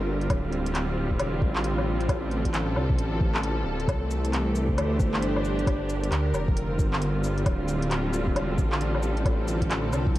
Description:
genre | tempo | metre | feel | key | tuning
future garage | 134 BPM | 4/4 | swing 62% on 16ths | D minor | A4 = 439 Hz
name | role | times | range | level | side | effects
rich symphonic string section | sustained chords | 0.0-10.2 s | D3 to C5 | -28 LUFS | right 1 dB | sidechain pumping
swelling detuned saw bass | bass | 0.0-10.2 s | D1 to D2 | -28 LUFS | equal | none
organic electronic drum kit | drums | 0.2-10.2 s | cabasa, handclaps, hi-hat, woodblock | -33 LUFS | left 1 dB | overdrive
electronic kick drum | drums | 0.3-10.1 s | none | -26 LUFS | equal | overdrive
room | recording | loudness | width
moderate lush hall reverb, RT60 2.1 s | dreamy mix soaked in reverb, cassette tape | -23 LUFS | side -15 dB against mid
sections
0.0-10.2 A section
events
none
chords
0.3 Dm; 3.9 C; 5.7 Gm; 7.5 Dm

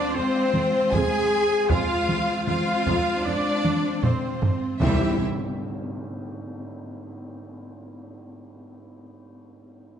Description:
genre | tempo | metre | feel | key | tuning
cinematic, epic orchestral film score | 77 BPM | 4/4 | straight | unclear | A4 = 440 Hz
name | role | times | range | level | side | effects
rich studio violin section | melody | 0.0-5.2 s | C5 to Ab5 | -34 LUFS | left 1 dB | none
clear symphonic violin section | second line | 0.0-5.2 s | C5 to Ab5 | -34 LUFS | left 1 dB | none
warm studio viola section | accompaniment | 0.0-5.2 s | C4 to Ab4 | -33 LUFS | right 2 dB | none
mellow French horn section | sustained chords | 0.0-5.2 s | C4 to Ab4 | -26 LUFS | left 3 dB | none
rich symphonic string section | sustained chords | 0.0-5.2 s | G3 to C5 | -31 LUFS | equal | none
mellow trumpet | stabs | 0.0-5.2 s | G3 to Ab5 | -32 LUFS | right 1 dB | none
rich symphonic cello section | bass | 0.0-5.2 s | E3 to Ab4 | -31 LUFS | right 3 dB | none
clear symphonic double bass section | bass | 0.1-5.2 s | C2 to F2 | -30 LUFS | right 4 dB | none
taiko ensemble | drums | 0.5-6.3 s | none | -27 LUFS | equal | none
tam-tam | percussion | 4.8-7.9 s | none | -35 LUFS | equal | none
timpani | percussion | 4.8-5.2 s | C3 | -31 LUFS | right 1 dB | none
room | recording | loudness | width
wet scoring stage reverb, RT60 1.9 s | nothing above 10.7 kHz | -21 LUFS | side -8 dB against mid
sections
0.0-4.8 A section; 4.8-7.9 B section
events
drum fill 3.6-4.8; band accent 4.8-5.6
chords
0.0 Fm; 4.8 C

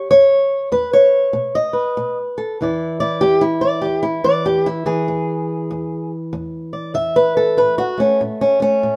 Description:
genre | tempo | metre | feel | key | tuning
acoustic country blues, solo or duo | 96 BPM | 4/4 | swing 63% on 8ths | E mixolydian | A4 = 437 Hz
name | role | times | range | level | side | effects
fingerpicked old ladder-braced acoustic guitar | solo | 0.0-9.0 s | E2 to E5 | -17 LUFS | equal | none
room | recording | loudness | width
moderate stone room reverb, RT60 1.0 s | band playing live in one room | -17 LUFS | mono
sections
0.0-2.6 A section; 2.6-9.0 A section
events
steel-string acoustic guitar solo 0.0-2.6, 2.6-9.0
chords
0.1 N.C.; 1.3 B7; 2.6 E7; 7.6 A

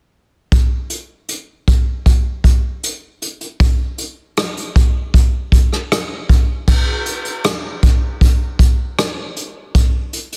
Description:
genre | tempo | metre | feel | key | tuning
pop | 78 BPM | 4/4 | straight | none | none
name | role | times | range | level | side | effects
vintage brush drum kit | drums | 0.5-10.4 s | crash cymbal, hi-hat, kick drum, rim click | -16 LUFS | equal | none
room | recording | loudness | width
little or no reverb | dense, heavily limited modern master | -16 LUFS | mono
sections
0.5-6.7 A section; 6.7-10.4 B section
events
none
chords
none

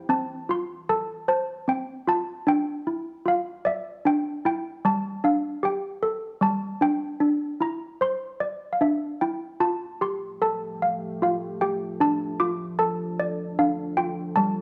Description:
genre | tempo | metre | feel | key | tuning
children's music, lullaby | 76 BPM | 3/4 | straight | F major | A4 = 442 Hz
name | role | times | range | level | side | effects
malleted handbells | melody | 0.0-14.6 s | G3 to D6 | -26 LUFS | equal | none
deep dark ambient pad | sustained chords | 0.0-0.1, 10.3-14.6 s | F3 to A4 | -37 LUFS | equal | chorus, built-in reverb
room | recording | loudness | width
moderate recital hall reverb, RT60 1.4 s | close, detailed microphones | -26 LUFS | mono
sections
0.1-14.6 A section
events
none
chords
0.1 F; 2.5 Dmadd9; 4.8 Gsus2; 7.2 Cadd9; 9.6 Fadd9; 12.0 Dm/F

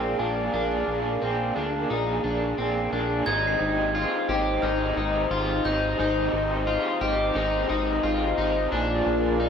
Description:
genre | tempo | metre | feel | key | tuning
dream pop | 88 BPM | 4/4 | straight | Ab lydian | A4 = 438 Hz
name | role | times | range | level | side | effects
raw garage guitar | accompaniment | 0.0-9.5 s | Bb2 to Ab4 | -29 LUFS | right 2 dB | overdrive, tremolo, wide subtle chorus
warm analog pad | sustained chords | 0.0-9.5 s | Eb4 to F5 | -27 LUFS | left 1 dB | chorus
electric guitar at the edge of break-up | arpeggios | 0.0-9.5 s | C4 to G4 | -28 LUFS | left 2 dB | lush chorus, diffuse ambient delay
chorused synth bass | bass | 0.0-9.5 s | Ab1 to D2 | -31 LUFS | equal | none
glockenspiel with hard plastic mallets | texture | 3.3-8.7 s | F6 to C7 | -33 LUFS | right 3 dB | diffuse ambient delay
room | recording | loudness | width
wet plate reverb, RT60 2.6 s | dreamy mix soaked in reverb | -22 LUFS | side -7 dB against mid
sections
0.0-3.3 A section; 3.3-9.5 B section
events
none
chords
0.0 Bb7; 3.3 Abmaj7; 8.7 Bb7

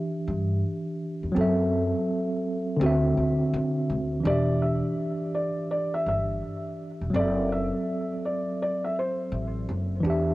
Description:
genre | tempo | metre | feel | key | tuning
lo-fi hip hop | 83 BPM | 4/4 | swing 63% on 16ths | E minor | A4 = 440 Hz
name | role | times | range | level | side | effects
tine electric piano | accompaniment | 0.0-10.3 s | D3 to E5 | -26 LUFS | equal | overdrive, fast stereo tremolo, cassette tape, low-pass filter
upright bass | bass | 0.3-10.3 s | E1 to D3 | -29 LUFS | equal | tube saturation
felt-muted upright piano | melody | 4.3-9.3 s | C5 to E5 | -30 LUFS | equal | low-pass filter, cassette tape, analog delay
room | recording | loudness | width
light reverb, small room ambience | home recording on cassette | -24 LUFS | side -18 dB against mid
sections
0.0-4.2 A section; 4.2-10.3 B section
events
none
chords
0.0 Em7; 1.4 F#m7b5; 2.8 D9; 4.2 Em7; 7.1 F#m7b5

